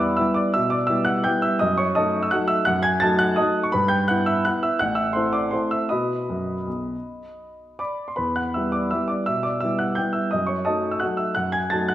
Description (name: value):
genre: classical, piano waltz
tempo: 155-178 BPM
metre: 3/4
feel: rubato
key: E minor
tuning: A4 = 440 Hz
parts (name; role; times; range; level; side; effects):
- clear grand piano; solo; 0.0-11.9 s; A1 to A6; -20 LUFS; equal; none
room: wet recital hall reverb, RT60 1.4 s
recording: none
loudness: -20 LUFS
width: side -13 dB against mid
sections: 0.0-11.9 A section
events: none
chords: 0.0 Em; 1.6 D#dim/F#; 3.7 Em/G; 4.8 Am; 5.9 B; 8.2 Em; 10.3 D#dim/F#